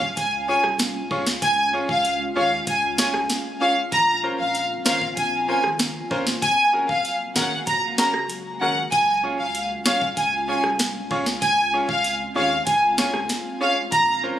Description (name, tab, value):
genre	dancehall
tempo	96 BPM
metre	4/4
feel	straight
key	Db major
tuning	A4 = 440 Hz
part	clear symphonic violin section	melody	0.0-14.1 s	F5 to Bb5	-21 LUFS	equal	ping-pong delay
part	ethereal airy pad	sustained chords	0.1-14.4 s	Db3 to Gb4	-34 LUFS	right 1 dB	ensemble chorus, built-in reverb
part	warm sub bass	bass	0.0-14.3 s	F1 to Eb2	-38 LUFS	equal	none
part	island pop drum kit	drums	0.0-14.1 s	hi-hat, kick drum, rim click, snare drum	-24 LUFS	equal	overdrive
part	bright baby grand piano	accompaniment	0.5-14.4 s	Db4 to Db5	-26 LUFS	equal	none
room	light reverb, digital ambience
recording	recorded on a phone in the room, studio ambience, compression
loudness	-19 LUFS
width	side -11 dB against mid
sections	0.0-14.4 A section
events	none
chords	0.0 Db; 3.9 Bbmadd9; 6.4 Gbadd9; 8.9 Db